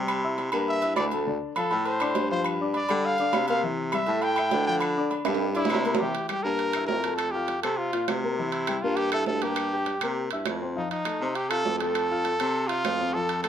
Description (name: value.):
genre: Afro-Cuban jazz.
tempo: 202 BPM.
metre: 4/4.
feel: straight.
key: C mixolydian.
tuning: A4 = 440 Hz.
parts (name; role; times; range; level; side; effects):
warm concert grand piano; accompaniment; 0.0-13.5 s; D3 to G6; -31 LUFS; left 4 dB; none.
breathy baritone saxophone; bass; 0.0-13.5 s; D2 to D3; -30 LUFS; equal; none.
agogo bells and timbales; percussion; 0.1-13.5 s; none; -30 LUFS; right 4 dB; none.
claves; percussion; 0.1-13.5 s; none; -38 LUFS; left 6 dB; none.
clear trumpet; melody; 0.7-13.5 s; Eb4 to G5; -28 LUFS; equal; none.
room: light reverb.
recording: none.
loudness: -24 LUFS.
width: side -9 dB against mid.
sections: 0.0-6.0 A section; 6.0-13.5 B section.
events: trumpet solo 0.0-6.0; drum fill 5.3-6.0.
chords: 0.1 C7; 1.3 Dm7; 2.5 G5; 3.6 C; 4.2 A5; 4.8 Dm; 5.4 G5; 6.0 C7 (rootless); 7.2 F; 8.4 C7; 9.6 Gm; 10.2 C7; 10.8 F7.